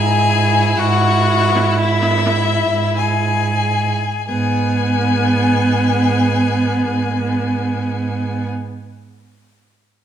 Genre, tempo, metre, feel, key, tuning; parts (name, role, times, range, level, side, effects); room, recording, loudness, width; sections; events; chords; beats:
classical, slow romantic movement for string quartet; 43-63 BPM; 4/4; rubato; G# minor; A4 = 440 Hz
rich violin; melody; 0.0-8.5 s; E5 to G#5; -22 LUFS; left 7 dB
clear violin; second line; 0.0-8.5 s; E4 to G#4; -22 LUFS; left 5 dB
rich viola; accompaniment; 0.0-8.5 s; B3 to E4; -20 LUFS; right 2 dB
rich cello; bass; 0.0-8.5 s; G#2; -19 LUFS; right 4 dB
moderate recital hall reverb, RT60 1.5 s; -14 LUFS; side -9 dB against mid
0.0-4.3 A section; 4.3-9.2 B section
slowing down 0.0-4.3
0.0 Eadd9/G#; 4.3 G#m
0.79 1.81 2.98 | 4.29 5.47 6.71 7.96